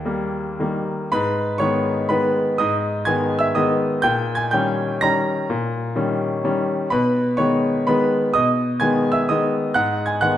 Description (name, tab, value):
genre	classical, piano waltz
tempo	125 BPM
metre	3/4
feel	uneven beats, rubato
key	G# minor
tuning	A4 = 439 Hz
part	bright concert grand piano	solo	0.0-10.4 s	D#2 to A#6	-18 LUFS	equal	none
room	wet recital hall reverb, RT60 1.6 s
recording	none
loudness	-18 LUFS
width	side -11 dB against mid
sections	0.0-1.1 A section; 1.1-10.4 B section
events	none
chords	0.0 D#; 1.1 G#m; 4.0 D#7/A#; 6.9 G#m/B; 9.8 G#m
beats	0.05 0.59 | 1.12 1.60 2.11 | 2.59 3.07 3.56 | 4.04 4.52 5.02 | 5.50 5.96 6.44 | 6.91 7.38 7.87 | 8.34 8.80 9.29 | 9.76 10.21